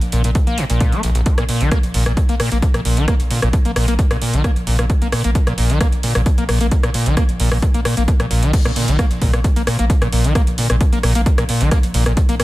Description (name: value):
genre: driving peak-time techno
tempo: 132 BPM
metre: 4/4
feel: straight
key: unclear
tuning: A4 = 442 Hz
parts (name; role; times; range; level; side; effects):
- saturated sub bass; bass; 0.0-12.4 s; Bb1; -20 LUFS; equal; overdrive, sidechain pumping, low-pass filter
- techno drum kit; drums; 0.0-12.4 s; crash cymbal, hi-hat, rim click; -24 LUFS; equal; none
- screaming distorted acid line; riff; 0.1-12.4 s; Bb1 to Bb3; -20 LUFS; equal; distortion, analog chorus, sidechain pumping, digital delay
- electronic kick drum; drums; 0.4-12.3 s; none; -17 LUFS; equal; none
room: digital ambience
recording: none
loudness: -14 LUFS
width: side -17 dB against mid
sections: 0.0-8.5 A section; 8.5-12.4 B section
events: drop 8.5-12.4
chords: none